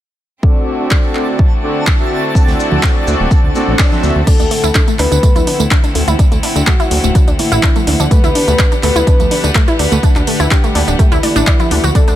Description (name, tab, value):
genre	progressive house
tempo	125 BPM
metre	4/4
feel	straight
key	D mixolydian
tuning	A4 = 440 Hz
part	bright chamber string section	sustained chords	0.4-12.2 s	D3 to F#5	-22 LUFS	left 1 dB	sidechain pumping, low-pass filter
part	soft supersaw	stabs	0.4-4.1 s	C4 to E5	-18 LUFS	right 1 dB	sidechain pumping, low-pass filter, dub echo
part	electronic kick drum	drums	0.4-12.1 s	none	-11 LUFS	equal	none
part	twinkling granular texture	texture	1.1-4.3 s	A5	-27 LUFS	right 1 dB	built-in reverb, sidechain pumping
part	deep house drum kit	drums	0.9-12.2 s	crash cymbal, handclaps, hi-hat, tambourine	-19 LUFS	equal	sidechain pumping on hats, sidechain pumping on cymbals, sidechain pumping on perc
part	shaker and snare drum	drums	2.4-4.2 s	none	-28 LUFS	left 3 dB	high-pass filter on snare, high-pass filter on perc, high-pass filter on room
part	fat analog bass	bass	2.5-12.1 s	D1 to D2	-16 LUFS	equal	sidechain pumping
part	congas	percussion	2.7-11.9 s	none	-25 LUFS	right 4 dB	sidechain pumping on perc
part	swell	sound effects	3.5-4.3 s	none	-24 LUFS	equal	none
part	soft octave-layered synth lead	melody	4.3-12.2 s	E4 to B4	-19 LUFS	left 2 dB	chorus, vintage 12-bit sampler grit, dub echo
part	wide unison pluck	arpeggios	4.3-12.1 s	A3 to D5	-18 LUFS	equal	sidechain pumping, dub echo
room	small room ambience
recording	none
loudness	-10 LUFS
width	side -12 dB against mid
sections	0.4-4.3 A section; 4.3-12.2 B section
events	filter sweep on supersaw synth 0.4-4.3; swell 3.5-4.3; filter sweep on synth pluck 4.3-12.2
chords	0.4 D7; 8.1 Em7/D